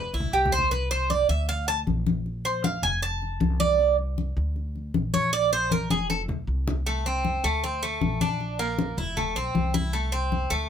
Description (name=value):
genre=latin, Cuban son and guajira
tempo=156 BPM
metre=4/4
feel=straight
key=unclear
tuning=A4 = 440 Hz
part: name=Cuban tres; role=arpeggios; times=0.0-10.7 s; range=A3 to A5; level=-25 LUFS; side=right 2 dB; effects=none
part: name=upright bass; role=bass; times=0.0-10.7 s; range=F1 to D2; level=-29 LUFS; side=equal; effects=none
part: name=congas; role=percussion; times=0.2-10.7 s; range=none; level=-28 LUFS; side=left 4 dB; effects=none
room=light reverb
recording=close, detailed microphones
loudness=-23 LUFS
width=side -8 dB against mid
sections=0.0-6.9 A section; 6.9-10.7 B section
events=drum fill 0.0-0.7, 5.7-6.9; Cuban tres solo 0.0-6.9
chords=0.0 F5; 0.7 Cmaj9; 1.5 Bbmaj7; 2.3 Bb5; 3.0 F; 3.8 Csus2; 4.6 Bb; 5.3 Bb5; 6.1 F5; 6.9 Amadd11/C; 7.6 D5; 8.4 Bb; 9.2 Fmaj7; 9.9 Amadd11/C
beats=0.33 | 0.72 1.10 1.49 1.87 | 2.26 2.64 3.02 3.41 | 3.79 4.18 4.56 4.95 | 5.33 5.71 6.10 6.48 | 6.87 7.25 7.63 8.02 | 8.40 8.78 9.17 9.55 | 9.93 10.32